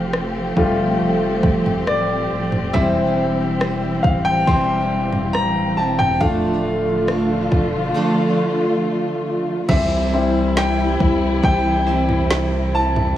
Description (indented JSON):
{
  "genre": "pop ballad",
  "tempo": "69 BPM",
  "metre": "4/4",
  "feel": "straight",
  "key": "unclear",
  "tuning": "A4 = 441 Hz",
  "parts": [
    { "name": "bright concert grand piano", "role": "accompaniment", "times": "0.0-13.2 s", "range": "G3 to C6", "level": "-21 LUFS", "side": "left 2 dB", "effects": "none" },
    { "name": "warm studio string section", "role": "sustained chords", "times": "0.0-13.2 s", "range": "C3 to G4", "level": "-22 LUFS", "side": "equal", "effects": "none" },
    { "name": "saturated sub bass", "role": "bass", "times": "0.0-13.1 s", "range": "D1 to C2", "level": "-25 LUFS", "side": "equal", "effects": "none" },
    { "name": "deep house drum kit", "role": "drums", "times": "0.1-13.2 s", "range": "crash cymbal, kick drum, rim click, snare drum, toms", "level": "-22 LUFS", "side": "equal", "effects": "none" },
    { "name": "picked steel-string acoustic guitar", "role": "arpeggios", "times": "2.7-13.2 s", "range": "C3 to C5", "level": "-23 LUFS", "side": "right 2 dB", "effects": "digital delay" }
  ],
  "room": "light reverb, small room reverb",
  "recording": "small room ambience",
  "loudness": "-16 LUFS",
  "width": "side -12 dB against mid",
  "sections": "0.0-9.7 A section; 9.7-13.2 B section",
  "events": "grand piano solo 0.0-9.7, 9.7-13.2",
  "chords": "0.0 Fadd9; 2.7 C; 6.2 Dm; 9.7 C",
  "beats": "0.13 1.00 1.87 | 2.74 3.61 4.48 5.35 | 6.22 7.09 7.96 8.83 | 9.70 10.57 11.44 12.30 | 13.17"
}